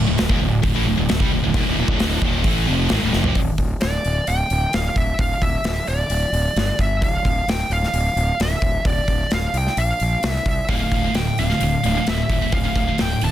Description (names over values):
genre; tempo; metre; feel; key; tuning
heavy metal; 131 BPM; 4/4; straight; D minor; A4 = 440 Hz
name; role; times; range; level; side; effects
high-gain distorted guitar; riff; 0.0-3.4, 10.7-13.3 s; D2 to A3; -25 LUFS; left 8 dB; distortion
high-gain distorted guitar; riff; 0.0-3.4, 10.7-13.3 s; D2 to A3; -25 LUFS; right 10 dB; distortion
thick fuzz guitar; riff; 0.0-3.4 s; D2 to A3; -25 LUFS; equal; distortion
fuzz fingered electric bass; bass; 0.0-13.3 s; D1 to C2; -22 LUFS; equal; overdrive
big rock drum kit; drums; 0.2-13.3 s; hi-hat, kick drum, snare drum, toms; -23 LUFS; equal; none
high-gain lead guitar; melody; 3.8-13.3 s; D5 to A5; -23 LUFS; right 1 dB; distortion
room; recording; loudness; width
little or no reverb; dense, heavily limited modern master; -17 LUFS; side -12 dB against mid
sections
0.0-3.4 A section; 3.4-13.3 B section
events
drum fill 3.1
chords
0.0 Dm; 3.4 Dsus2; 6.6 G5; 7.0 Dm; 9.8 Bb5; 10.2 Cadd11; 10.7 Dm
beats
0.18 0.63 1.09 | 1.54 2.00 2.45 2.91 | 3.36 3.82 4.27 4.73 | 5.19 5.65 6.10 6.56 | 7.02 7.48 7.94 8.39 | 8.85 9.31 9.77 10.23 | 10.69 11.15 11.61 12.07 | 12.53 12.99